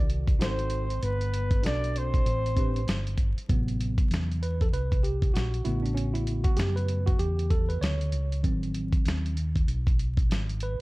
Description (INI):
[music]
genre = hip hop, jazz-hop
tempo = 97 BPM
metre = 4/4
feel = swing 60% on 16ths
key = A dorian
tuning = A4 = 441 Hz
[part]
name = breathy flugelhorn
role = melody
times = 0.0-3.2 s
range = B4 to D5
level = -33 LUFS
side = right 2 dB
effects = none
[part]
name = breathy trombone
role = second line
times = 0.0-3.2 s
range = B3 to D4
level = -39 LUFS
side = left 6 dB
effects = none
[part]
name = tine electric piano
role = accompaniment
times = 0.0-10.8 s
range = C3 to D5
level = -33 LUFS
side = right 1 dB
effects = overdrive, fast stereo tremolo
[part]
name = hollow-body short-scale fingered electric bass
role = bass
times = 0.0-10.8 s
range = G1 to F#2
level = -29 LUFS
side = equal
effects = none
[part]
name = dusty soul sampler-style drum kit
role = drums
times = 0.1-10.8 s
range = hi-hat, kick drum, snare drum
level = -26 LUFS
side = equal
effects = vintage 12-bit sampler grit
[sound]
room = digital ambience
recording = dark, warm production, vinyl crackle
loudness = -24 LUFS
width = side -21 dB against mid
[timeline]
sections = 0.0-3.5 A section; 3.5-10.8 B section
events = tine electric piano solo 3.5-10.8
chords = 0.0 D7b9; 1.0 Gmaj7; 2.3 Am11; 3.5 Am69; 5.7 A69; 8.4 G#7#9